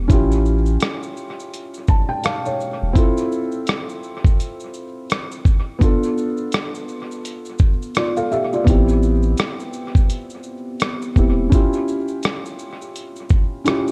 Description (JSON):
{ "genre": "lo-fi hip hop", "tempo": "84 BPM", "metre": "4/4", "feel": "swing 59% on 16ths", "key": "A minor", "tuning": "A4 = 441 Hz", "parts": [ { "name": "felt-muted upright piano", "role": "accompaniment", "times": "0.0-13.9 s", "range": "B3 to A5", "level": "-24 LUFS", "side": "equal", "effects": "none" }, { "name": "soft dub sub bass", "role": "bass", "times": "0.0-3.0, 8.7-11.5 s", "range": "E1 to A1", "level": "-21 LUFS", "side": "equal", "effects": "none" }, { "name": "dusty soul sampler-style drum kit", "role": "drums", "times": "0.1-13.9 s", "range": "hi-hat, kick drum, rim click, shaker", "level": "-20 LUFS", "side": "equal", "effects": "none" } ], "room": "little or no reverb", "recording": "echo-heavy mix, cassette tape", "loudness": "-19 LUFS", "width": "mono", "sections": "0.0-13.9 A section", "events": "none", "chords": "0.1 A7b13; 3.0 Fmaj7/C; 5.8 Bm7b5; 8.7 Am7; 11.5 C#dim", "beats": "| 0.10 0.81 1.53 2.24 | 2.95 3.67 4.38 5.10 | 5.81 6.53 7.24 7.95 | 8.67 9.38 10.10 10.81 | 11.53 12.24 12.95 13.67" }